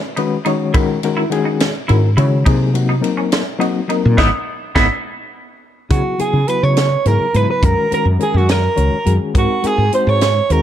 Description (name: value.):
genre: electric jazz fusion.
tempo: 70 BPM (dotted quarters).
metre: 6/8.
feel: straight.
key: C# dorian.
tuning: A4 = 440 Hz.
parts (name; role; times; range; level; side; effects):
overdriven reed electric piano; accompaniment; 0.2-10.6 s; C#3 to C#5; -20 LUFS; left 6 dB; fast tremolo.
clean electric guitar; stabs; 0.2-4.8 s; B3 to E4; -22 LUFS; right 2 dB; wide subtle chorus.
crisp fusion drum kit; drums; 0.2-10.6 s; hi-hat, kick drum, ride cymbal, snare drum; -20 LUFS; right 1 dB; none.
woody fretless electric bass; bass; 1.9-10.6 s; G#1 to C#3; -15 LUFS; equal; lush chorus.
mellow soprano saxophone; melody; 5.9-10.6 s; F#4 to C#5; -17 LUFS; right 4 dB; slapback echo.
hollow-body jazz guitar; second line; 5.9-10.6 s; F#4 to C#5; -26 LUFS; left 5 dB; none.
room: light reverb, studio ambience.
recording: dark, warm production.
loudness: -13 LUFS.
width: side -10 dB against mid.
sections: 0.0-5.9 A section; 5.9-10.6 B section.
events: fretless electric bass solo 0.0-5.9; drum fill 4.2-5.9; band accent 4.2-5.9.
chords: 0.0 C#sus2; 0.7 F#7; 2.5 G#9; 4.2 Emaj7/G#; 5.9 C#m7; 7.6 F#; 9.3 G#9.